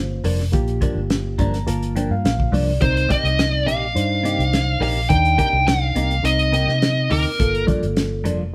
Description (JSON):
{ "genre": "straight-eighth soul blues", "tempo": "105 BPM", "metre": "4/4", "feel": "straight", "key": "G minor", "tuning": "A4 = 440 Hz", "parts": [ { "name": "barky reed electric piano", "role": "accompaniment", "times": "0.0-8.4 s", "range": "Bb3 to Bb5", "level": "-29 LUFS", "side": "equal", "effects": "none" }, { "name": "vintage muted fingered electric bass", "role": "bass", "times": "0.0-8.5 s", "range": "F1 to C3", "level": "-24 LUFS", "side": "equal", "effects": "none" }, { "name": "direct-recorded clean electric guitar", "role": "stabs", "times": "0.2-8.4 s", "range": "G2 to G4", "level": "-28 LUFS", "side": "equal", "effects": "phaser" }, { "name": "damped 70s drum kit", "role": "drums", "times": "0.2-8.4 s", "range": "hi-hat, kick drum, snare drum", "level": "-25 LUFS", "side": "equal", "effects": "none" }, { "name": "smooth overdriven lead guitar", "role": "melody", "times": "2.8-7.6 s", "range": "Bb4 to G5", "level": "-23 LUFS", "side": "equal", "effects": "none" } ], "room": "moderate stone room reverb, RT60 1.1 s", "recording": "band playing live in one room", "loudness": "-19 LUFS", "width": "mono", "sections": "0.0-8.5 A section", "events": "reed electric piano fill 1.1-2.8", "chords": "0.0 Gm7; 2.8 Cm7; 7.4 Gm7" }